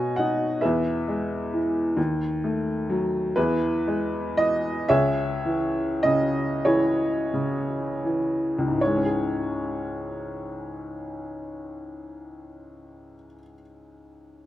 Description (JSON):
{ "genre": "classical, lyrical solo piano", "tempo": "25-45 BPM (dotted quarters)", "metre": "6/8", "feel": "rubato", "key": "C# minor", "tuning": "A4 = 440 Hz", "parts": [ { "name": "warm upright piano", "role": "solo", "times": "0.0-14.5 s", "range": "C#2 to G#5", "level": "-23 LUFS", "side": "equal", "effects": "none" } ], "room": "light reverb", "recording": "close, detailed microphones", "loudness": "-22 LUFS", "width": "side -13 dB against mid", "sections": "0.0-8.8 A section; 8.8-13.5 B section", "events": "slowing down 2.0-8.8", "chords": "0.0 Badd9; 0.6 E; 2.0 D#dim; 3.4 E; 4.9 C#m" }